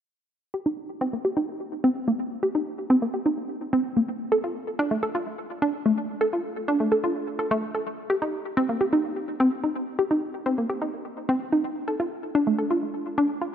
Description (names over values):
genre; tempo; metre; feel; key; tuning
house; 127 BPM; 4/4; straight; C dorian; A4 = 440 Hz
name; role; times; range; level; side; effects
analog pluck; arpeggios; 0.5-13.5 s; A3 to A4; -23 LUFS; equal; chorus, tape echo
room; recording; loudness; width
wet lush hall reverb, RT60 2.6 s; none; -23 LUFS; side -9 dB against mid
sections
0.5-13.5 A section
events
filter sweep on synth pluck 0.5-13.5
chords
none